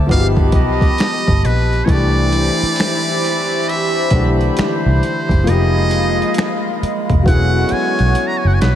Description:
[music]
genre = R&B, neo-soul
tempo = 67 BPM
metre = 4/4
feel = swing 62% on 16ths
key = unclear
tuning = A4 = 440 Hz
[part]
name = clear concert grand piano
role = accompaniment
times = 0.0-8.8 s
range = D3 to A4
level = -20 LUFS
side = left 2 dB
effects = none
[part]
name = hollow soft pad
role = sustained chords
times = 0.0-8.8 s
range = Ab3 to C#6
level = -22 LUFS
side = equal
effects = chorus
[part]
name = vintage muted picked electric bass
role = bass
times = 0.0-8.8 s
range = E1 to C2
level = -15 LUFS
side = equal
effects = none
[part]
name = trumpet with metal mute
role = melody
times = 0.1-8.8 s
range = B4 to Bb5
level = -21 LUFS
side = equal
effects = ping-pong delay
[part]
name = warm horn section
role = stabs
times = 0.1-8.6 s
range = D3 to Ab4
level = -27 LUFS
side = right 3 dB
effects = none
[part]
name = boom bap sampler-style drum kit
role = drums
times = 0.1-8.8 s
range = finger snaps, hi-hat, kick drum, snare drum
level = -18 LUFS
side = equal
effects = overdrive
[sound]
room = moderate church reverb, RT60 3.1 s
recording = dreamy mix soaked in reverb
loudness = -13 LUFS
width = side -10 dB against mid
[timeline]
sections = 0.0-8.8 A section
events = drum fill 7.3-8.8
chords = 0.1 G7alt; 1.9 Cmaj7; 5.5 Fm7b5; 7.3 E13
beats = 0.09 0.98 | 1.88 2.78 3.67 4.57 | 5.46 6.36 7.25 8.15

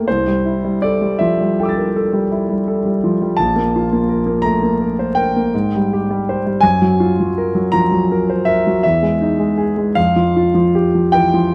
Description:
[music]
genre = classical, impressionist solo piano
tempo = 55 BPM (dotted quarters)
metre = 9/8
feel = uneven beats, rubato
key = unclear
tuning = A4 = 440 Hz
[part]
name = clear concert grand piano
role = solo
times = 0.0-11.5 s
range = Bb1 to A6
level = -16 LUFS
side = equal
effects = none
[sound]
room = light reverb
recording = close, detailed microphones, vinyl crackle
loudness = -16 LUFS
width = mono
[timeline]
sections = 0.0-11.5 A section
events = none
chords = 0.1 C69; 3.4 Bb5; 5.5 Abmaj7; 6.6 F#maj7; 8.8 Emaj7; 10.0 Fsus2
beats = | 0.06 1.19 2.28 | 3.37 4.43 5.53 | 6.62 7.71 8.83 | 9.96 11.14

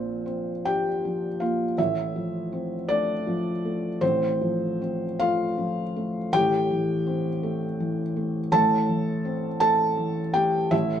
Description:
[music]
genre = neoclassical minimalist piano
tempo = 54 BPM (dotted quarters)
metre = 6/8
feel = rubato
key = unclear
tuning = A4 = 440 Hz
[part]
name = felt-muted upright piano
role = solo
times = 0.0-11.0 s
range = A1 to A5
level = -23 LUFS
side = equal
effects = none
[sound]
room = moderate studio reverb, RT60 0.8 s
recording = band playing live in one room, nothing above 10.5 kHz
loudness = -23 LUFS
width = side -9 dB against mid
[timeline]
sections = 0.0-11.0 A section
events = none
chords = 0.0 Bbadd9; 1.8 F/A; 6.3 Am7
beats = 0.65 | 1.78 2.89 | 4.02 5.19 | 6.33 7.43 | 8.52 9.61 | 10.72

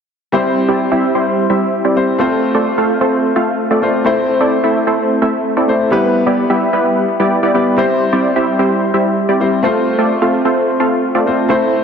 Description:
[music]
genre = EDM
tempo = 129 BPM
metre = 4/4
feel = straight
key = unclear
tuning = A4 = 440 Hz
[part]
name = warm grand piano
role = accompaniment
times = 0.3-11.8 s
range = G3 to C5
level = -17 LUFS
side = left 3 dB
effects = tape echo
[part]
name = supersaw stab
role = riff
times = 0.3-11.8 s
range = G3 to F5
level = -13 LUFS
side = right 1 dB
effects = low-pass filter, tape echo
[sound]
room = wet lush hall reverb, RT60 2.5 s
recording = dense, heavily limited modern master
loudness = -12 LUFS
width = side -6 dB against mid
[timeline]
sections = 0.3-11.8 A section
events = none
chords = 0.3 C; 2.2 F; 4.1 Am; 5.9 Em; 7.8 C; 9.6 F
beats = | 0.34 0.80 1.27 1.73 | 2.20 2.66 3.13 3.59 | 4.06 4.52 4.99 5.45 | 5.92 6.38 6.85 7.31 | 7.78 8.24 8.71 9.17 | 9.64 10.10 10.57 11.03 | 11.50

